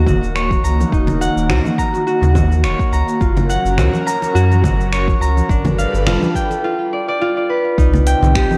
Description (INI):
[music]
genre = organic downtempo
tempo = 105 BPM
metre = 4/4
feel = swing 55% on 16ths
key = unclear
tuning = A4 = 438 Hz
[part]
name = airy breathy pad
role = sustained chords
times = 0.0-8.6 s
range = C3 to B4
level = -25 LUFS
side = equal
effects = chorus, phaser, sidechain pumping
[part]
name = concert harp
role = arpeggios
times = 0.0-8.6 s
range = D4 to Bb5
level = -21 LUFS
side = equal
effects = digital delay
[part]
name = warm sub bass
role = bass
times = 0.0-8.5 s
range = Eb1 to Gb2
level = -18 LUFS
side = equal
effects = tube saturation, sidechain pumping
[part]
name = electronic kick drum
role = drums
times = 0.1-8.5 s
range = none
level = -21 LUFS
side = equal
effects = none
[part]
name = organic electronic drum kit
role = drums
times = 0.1-8.6 s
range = congas, finger snaps, hi-hat, shaker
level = -26 LUFS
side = equal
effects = none
[part]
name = congas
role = percussion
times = 0.1-8.6 s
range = none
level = -25 LUFS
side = equal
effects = none
[sound]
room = moderate echo chamber reverb, RT60 1.8 s, digital ambience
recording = worn, warbling old tape, cassette tape, warbly pitch drift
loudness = -16 LUFS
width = mono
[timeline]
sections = 0.0-7.8 A section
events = none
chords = 0.0 Ebm7; 3.2 Gbmaj7; 5.5 G7; 7.8 Cm7